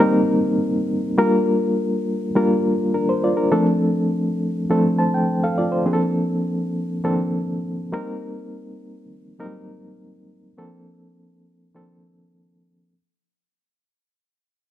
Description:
soul; 102 BPM; 4/4; straight; Bb major; A4 = 437 Hz
reed electric piano; solo; 0.0-13.0 s; F3 to A5; -18 LUFS; equal; fast tremolo
light reverb; dark, warm production; -18 LUFS; side -12 dB against mid
0.0-12.9 A section
fade-out 0.0-12.9
0.0 Eb6; 1.2 Gm7; 3.5 Dm7; 5.9 Bbmaj9; 7.9 Eb6; 10.6 Bbmaj9

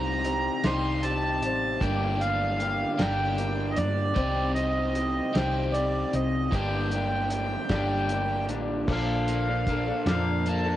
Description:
folk rock and heartland rock; 51 BPM (dotted quarters); 6/8; straight; G minor; A4 = 441 Hz
accordion; melody; 0.0-10.8 s; D5 to C6; -30 LUFS; right 1 dB; cassette tape, tape echo
picked twelve-string acoustic guitar; accompaniment; 0.0-10.8 s; G2 to A4; -33 LUFS; left 4 dB; cassette tape
crunchy overdriven guitar; riff; 0.0-10.8 s; G2 to G4; -31 LUFS; equal; spring reverb, cassette tape
hollow-body short-scale fingered electric bass; bass; 0.0-10.7 s; G1 to G2; -30 LUFS; equal
cloth-damped thuddy drum kit; drums; 0.2-10.6 s; crash cymbal, hi-hat, kick drum, snare drum; -30 LUFS; equal; cassette tape
light reverb; home recording on cassette; -24 LUFS; side -13 dB against mid
0.0-8.9 A section; 8.9-10.8 B section
0.0 Cm; 1.8 Gm; 4.2 Cm; 6.5 Gm; 8.9 Bbmaj7

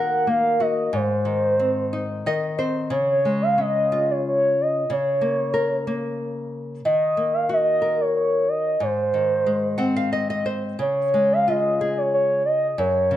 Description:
children's music, lullaby; 91 BPM; 3/4; straight; Db major; A4 = 439 Hz
gliding portamento lead; melody; 0.0-13.2 s; C5 to Gb5; -20 LUFS; equal; chorus
nylon-string guitar; accompaniment; 0.0-13.2 s; Gb2 to Gb5; -24 LUFS; left 1 dB
moderate recital hall reverb, RT60 1.5 s; -19 LUFS; side -12 dB against mid
0.0-2.9 A section; 2.9-13.2 B section
nylon-string guitar fill 1.9-2.9, 9.5-10.8
0.0 Ebm; 0.9 Ab; 2.9 Db; 4.9 Bbm/Db; 6.8 Ebm; 8.8 Ab; 10.8 Db

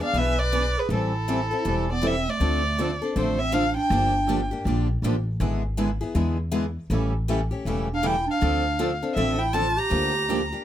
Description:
acoustic string swing (jazz manouche); 160 BPM; 4/4; swing 61% on 8ths; D minor; A4 = 440 Hz
warm violin; melody; 0.0-4.5, 7.9-10.5 s; A4 to Bb5; -26 LUFS; left 1 dB
growling clarinet; second line; 0.0-4.5, 7.9-10.5 s; A3 to D5; -30 LUFS; right 6 dB
picked steel-string acoustic guitar; accompaniment; 0.0-10.6 s; C#3 to A4; -29 LUFS; left 4 dB
upright bass; bass; 0.1-10.5 s; E1 to E2; -26 LUFS; equal
picked steel-string acoustic guitar; accompaniment; 0.2-10.4 s; D3 to B4; -31 LUFS; right 6 dB
light reverb; close, detailed microphones; -22 LUFS; side -11 dB against mid
0.0-2.4 A section; 2.4-10.6 B section
0.0 E7; 0.9 Am7; 2.4 Dm7; 3.9 Gm7; 5.4 E7/G#; 6.9 A7; 8.4 Dm7; 9.9 Bb6/D

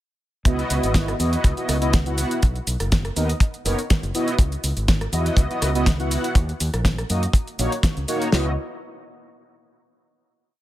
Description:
nu-disco, nu disco; 122 BPM; 4/4; straight; C# dorian; A4 = 441 Hz
mellow synth brass; accompaniment; 0.4-8.5 s; A#3 to F#5; -25 LUFS; right 1 dB; chorus, cassette tape, dub echo
modern bright fingered electric bass; bass; 0.5-8.6 s; F#1 to F#2; -24 LUFS; equal; sidechain pumping
damped 70s drum kit; drums; 0.5-8.4 s; kick drum, snare drum, splash cymbal; -17 LUFS; equal
pop drum kit; drums; 0.5-8.3 s; hi-hat, rim click, shaker, snare drum; -27 LUFS; equal
small room ambience; -19 LUFS; side -14 dB against mid
0.5-8.3 drop; 8.3-10.3 final chord
drop 0.5-8.3
0.5 C#m11; 2.4 Bmaj9; 4.1 C#m11; 6.4 D#m7; 8.3 C#m11

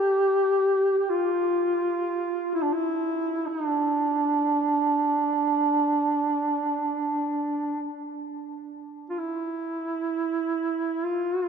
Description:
caucasian folk; free time; D minor; A4 = 440 Hz
mellow duduk; solo; 0.0-11.5 s; D4 to G4; -23 LUFS; right 1 dB
wet cathedral reverb, RT60 5.4 s; minimal, uncompressed stereo recording; -23 LUFS; side -6 dB against mid
0.0-11.5 A section

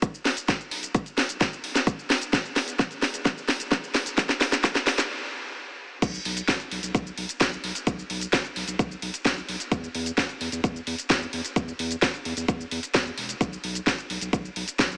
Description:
EDM, festival progressive house; 130 BPM; 4/4; straight; A4 = 440 Hz
saturated sub bass; bass; 0.0-15.0 s; E1 to E2; -36 LUFS; equal; sidechain pumping, high-pass filter
electronic kick drum; drums; 0.0-14.9 s; -25 LUFS; equal
house drum kit; drums; 0.0-15.0 s; crash cymbal, hi-hat, shaker, snare drum; -25 LUFS; equal
moderate huge ambient reverb, RT60 5.0 s; high-pass filter, small speaker sound; -24 LUFS; side -39 dB against mid
0.0-6.0 A section; 6.0-15.0 B section
build-up 0.0-6.0; drum fill 0.0-5.1; stop 5.1-6.0; drop 6.0-15.0

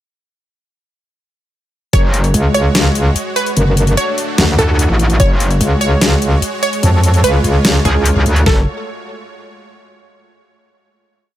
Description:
heavy wobble dubstep; 147 BPM; 4/4; half-time; F# harmonic minor; A4 = 444 Hz
wide unison pluck; melody; 1.9-8.6 s; G#4 to C#5; -20 LUFS; right 2 dB; digital delay
supersaw pad; sustained chords; 1.9-8.7 s; G#3 to C#5; -23 LUFS; right 1 dB; sidechain pumping
metallic wobble bass; bass; 1.9-8.7 s; F#1 to D2; -12 LUFS; equal; distortion, chorus, overdrive
dubstep drum kit; drums; 1.9-2.0, 5.2-5.3, 8.5-8.6 s; kick drum, snare drum; -12 LUFS; equal; overdrive
dubstep drum kit; drums; 1.9-8.4 s; hi-hat, snare drum; -17 LUFS; left 1 dB; overdrive
metallic wobble bass; bass; 2.3-7.8 s; F#1 to E#2; -12 LUFS; equal; chorus, overdrive
little or no reverb; -11 LUFS; side -13 dB against mid
1.9-8.5 drop; 8.5-10.1 final chord
drop 1.9-8.5
1.9 F#sus2; 3.6 D; 5.2 F#sus2; 6.8 C#; 8.5 F#m

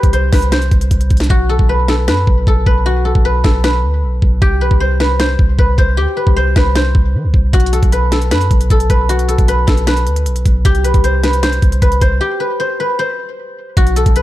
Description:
hip hop, trap; 154 BPM; 4/4; half-time; A4 = 440 Hz
guzheng; melody; 0.0-14.2 s; F#4 to C5; -17 LUFS; left 2 dB; ping-pong delay
long sustained 808-style bass; bass; 0.0-14.2 s; B1 to E3; -14 LUFS; equal
trap drum kit; drums; 0.0-14.2 s; hi-hat, kick drum, snare drum; -14 LUFS; equal
little or no reverb; dark, warm production; -11 LUFS; side -15 dB against mid
0.0-13.8 A section
drum fill 0.9-1.3; hi-hats muted 1.3-7.5; break 12.2-13.8
0.0 C5; 1.3 B5; 4.4 C5; 7.5 B5; 10.7 Gadd11/B

